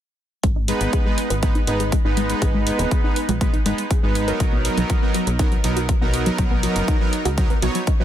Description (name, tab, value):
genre	progressive house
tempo	121 BPM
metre	4/4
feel	straight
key	G# minor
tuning	A4 = 440 Hz
part	wide unison pluck	arpeggios	0.4-8.0 s	F#3 to B4	-27 LUFS	left 1 dB	sidechain pumping, tape echo
part	tight sequencer bass	bass	0.4-8.0 s	D#1 to C#2	-25 LUFS	equal	sidechain pumping
part	electronic hi-hat	drums	0.4-8.0 s	none	-29 LUFS	right 1 dB	overdrive, sidechain pumping on hats
part	electronic kick drum	drums	0.4-8.0 s	none	-20 LUFS	equal	overdrive
part	soft supersaw	stabs	0.7-8.0 s	F#3 to C#5	-23 LUFS	right 2 dB	sidechain pumping, tape echo
room	little or no reverb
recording	dense, heavily limited modern master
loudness	-18 LUFS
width	side -11 dB against mid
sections	0.4-8.0 A section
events	none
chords	0.4 G#m; 4.4 Bmaj7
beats	| 0.43 0.93 1.43 1.92 | 2.42 2.91 3.41 3.91 | 4.40 4.90 5.39 5.89 | 6.38 6.88 7.38 7.87